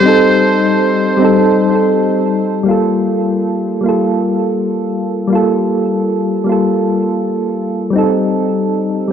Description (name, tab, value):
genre	chillout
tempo	91 BPM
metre	4/4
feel	swing 55% on 16ths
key	G minor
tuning	A4 = 435 Hz
part	trumpet with metal mute	melody	0.0-2.0 s	C5	-17 LUFS	equal	ping-pong delay
part	soft electric-piano-like synth keys	accompaniment	0.0-9.1 s	G3 to A4	-12 LUFS	equal	chorus, auto-pan, low-pass filter, digital delay
room	moderate plate reverb, RT60 2.8 s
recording	worn, warbling old tape, cassette tape, warbly pitch drift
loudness	-12 LUFS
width	side -8 dB against mid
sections	0.0-2.7 A section; 2.7-9.1 B section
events	none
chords	0.0 Am7b5; 2.7 Gm9; 8.0 Am7b5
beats	| 0.04 0.70 1.36 2.02 | 2.68 3.34 4.00 4.66 | 5.32 5.97 6.63 7.29 | 7.95 8.61